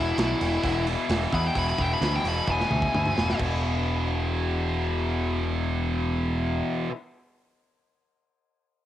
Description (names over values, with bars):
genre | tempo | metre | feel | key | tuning
hard rock | 130 BPM | 4/4 | straight | unclear | A4 = 440 Hz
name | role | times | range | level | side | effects
dark smooth lead guitar | melody | 0.0-3.4 s | E4 to B5 | -29 LUFS | left 2 dB | overdrive, cassette tape, tape echo
scooped high-gain guitar | riff | 0.0-6.9 s | E2 to E3 | -30 LUFS | right 7 dB | distortion, cassette tape
tight distorted guitar | riff | 0.0-6.9 s | E2 to E3 | -30 LUFS | left 7 dB | distortion, cassette tape
growling picked electric bass | bass | 0.0-6.6 s | E1 to E2 | -28 LUFS | equal | overdrive
tight metal drum kit | drums | 0.2-3.5 s | crash cymbal, hi-hat, kick drum, snare drum, toms | -31 LUFS | equal | cassette tape
room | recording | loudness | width
light reverb | home recording on cassette | -23 LUFS | side -12 dB against mid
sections
0.0-3.4 A section; 3.4-7.1 B section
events
lead electric guitar solo 0.0-3.4; drum fill 2.5-3.4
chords
0.0 E; 3.4 E5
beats
0.18 0.64 1.10 | 1.55 2.01 2.47 2.93 | 3.39 3.85 4.31 4.77 | 5.24 5.70 6.16 6.62